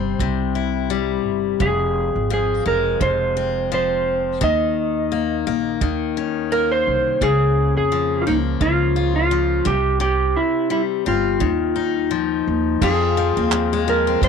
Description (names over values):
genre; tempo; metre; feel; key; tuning
acoustic pop; 86 BPM; 4/4; swing 55% on 16ths; F minor; A4 = 440 Hz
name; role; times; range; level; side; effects
electric slide guitar; melody; 0.0-14.3 s; Eb4 to Eb5; -20 LUFS; right 2 dB; none
picked steel-string acoustic guitar; accompaniment; 0.0-14.3 s; F2 to F4; -22 LUFS; left 12 dB; none
upright bass; bass; 0.0-14.3 s; F1 to F2; -24 LUFS; right 2 dB; none
cloth-damped thuddy drum kit; drums; 0.2-14.3 s; crash cymbal, handclaps, kick drum; -24 LUFS; right 6 dB; none
room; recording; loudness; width
light reverb, small room ambience; 1960s-style stereo with parts hard left and right; -17 LUFS; side -6 dB against mid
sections
0.0-12.8 A section; 12.8-14.3 B section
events
none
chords
0.0 C; 1.6 Fm; 4.4 Eb5; 7.2 Bbm/Db; 9.7 C5; 11.4 Ebsus2; 12.8 Fm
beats
0.20 0.91 | 1.61 2.31 3.01 3.71 | 4.41 5.11 5.81 6.51 | 7.21 7.91 8.61 9.31 | 10.02 10.72 11.42 12.12 | 12.82 13.52 14.22